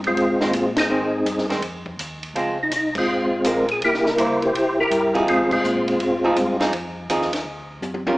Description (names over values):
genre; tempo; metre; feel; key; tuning
soul jazz organ trio; 165 BPM; 4/4; swing 65% on 8ths; F minor; A4 = 439 Hz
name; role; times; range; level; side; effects
mellow tonewheel organ; bass; 0.0-8.2 s; Ab1 to Bb2; -34 LUFS; equal; chorus vibrato, slow rotary speaker
compact cocktail drum kit; drums; 0.0-8.2 s; crash cymbal, hi-hat, kick drum, ride cymbal, snare drum, toms; -28 LUFS; equal; none
percussive tonewheel organ; melody; 0.1-6.6 s; Ab3 to C5; -19 LUFS; equal; slow rotary speaker, chorus vibrato
archtop guitar, miked and amplified; accompaniment; 0.4-8.2 s; Eb3 to Bb4; -24 LUFS; right 1 dB; none
room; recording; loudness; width
moderate recital hall reverb, RT60 1.6 s; recorded in a church or concert hall, small speaker sound, faint mains hum; -18 LUFS; side -20 dB against mid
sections
0.0-8.2 A section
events
band accent 0.7, 2.9, 5.4; drum fill 7.8-8.2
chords
0.0 Fm7; 2.4 Dbmaj7; 3.8 C7; 5.3 Fm7; 7.5 D